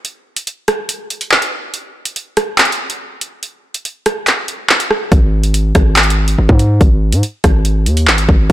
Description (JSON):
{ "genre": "hip hop, drill", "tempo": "142 BPM", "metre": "4/4", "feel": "half-time", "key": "unclear", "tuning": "A4 = 441 Hz", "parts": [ { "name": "drill drum kit", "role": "drums", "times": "0.0-8.5 s", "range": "handclaps, hi-hat, kick drum, rim click", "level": "-13 LUFS", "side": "equal", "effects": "none" }, { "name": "distorted 808-style bass", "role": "bass", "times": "5.1-8.5 s", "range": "G#1 to G#2", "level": "-12 LUFS", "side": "equal", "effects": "distortion" } ], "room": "little or no reverb", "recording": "blown-out, overdriven recording, overdrive", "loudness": "-11 LUFS", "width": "side -14 dB against mid", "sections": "0.0-8.5 A section", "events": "break 0.0-5.1", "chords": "none", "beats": "| 0.05 0.47 0.89 1.31 | 1.74 2.16 2.58 3.00 | 3.43 3.85 4.27 4.70 | 5.12 5.54 5.96 6.38 | 6.81 7.23 7.65 8.07 | 8.50" }